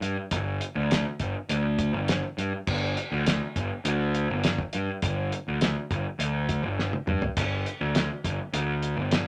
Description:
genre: psychedelic rock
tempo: 102 BPM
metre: 4/4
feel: straight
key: unclear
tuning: A4 = 437 Hz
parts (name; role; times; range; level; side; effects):
- fuzz picked electric bass; bass; 0.0-9.2 s; G1 to G2; -30 LUFS; equal; overdrive
- cloth-damped thuddy drum kit; drums; 0.0-9.3 s; crash cymbal, hi-hat, kick drum, snare drum, toms; -30 LUFS; equal; none
room: moderate studio ambience, RT60 0.5 s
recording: none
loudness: -28 LUFS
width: mono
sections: 0.0-9.3 A section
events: drum fill 6.8-7.4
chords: none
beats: | 0.31 0.90 1.49 2.08 | 2.67 3.26 3.85 4.44 | 5.03 5.62 6.20 6.79 | 7.37 7.95 8.54 9.12

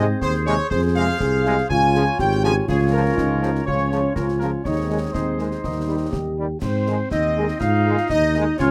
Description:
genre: military-style march for wind band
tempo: 122 BPM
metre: 2/4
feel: straight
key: Ab major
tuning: A4 = 440 Hz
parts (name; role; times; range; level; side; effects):
- dark trumpet section; melody; 0.0-8.7 s; Ab4 to Ab5; -28 LUFS; equal; none
- dark euphonium; second line; 0.0-8.7 s; C4 to Ab4; -28 LUFS; equal; none
- flute section; second line; 0.0-8.7 s; Ab4 to Ab5; -33 LUFS; equal; none
- mellow woodwind section; second line; 0.0-8.7 s; C4 to Eb5; -32 LUFS; equal; none
- mellow French horn section; accompaniment; 0.0-8.4 s; Eb3 to Ab4; -32 LUFS; equal; none
- warm trombone section; sustained chords; 0.0-8.4 s; C3 to Ab3; -28 LUFS; equal; none
- dark tuba; bass; 0.0-8.7 s; Ab1 to Ab2; -25 LUFS; equal; none
- concert snare drum, concert bass drum and clash cymbals; drums; 0.2-8.7 s; none; -34 LUFS; equal; none
room: little or no reverb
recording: close, detailed microphones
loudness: -21 LUFS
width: mono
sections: 0.0-6.6 A section; 6.6-8.7 B section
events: none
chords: 0.0 Ab; 0.7 Fm; 1.7 Db; 2.7 Bbm/Db; 4.7 Ab/Eb; 5.6 Eb; 6.6 Ab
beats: 0.22 | 0.71 1.21 | 1.70 2.19 | 2.68 3.17 | 3.67 4.16 | 4.65 5.14 | 5.63 6.13 | 6.62 7.11 | 7.61 8.10 | 8.59

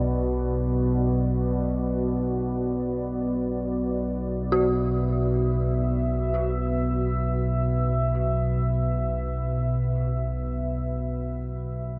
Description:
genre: dark ambient drone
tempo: free time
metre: none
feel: none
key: B minor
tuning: A4 = 442 Hz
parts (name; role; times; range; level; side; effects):
- deep dark ambient pad; sustained chords; 0.0-12.0 s; B3 to E5; -33 LUFS; equal; chorus, built-in reverb
- dark detuned synth bell; arpeggios; 0.0-12.0 s; F#4; -32 LUFS; equal; chorus, tape echo
- analog drone; drone; 0.0-12.0 s; B1 to B2; -27 LUFS; equal; chorus
room: moderate huge ambient reverb, RT60 7.9 s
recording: none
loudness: -26 LUFS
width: mono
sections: 0.0-12.0 A section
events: fade-out 8.5-12.0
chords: 0.0 Bm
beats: free time

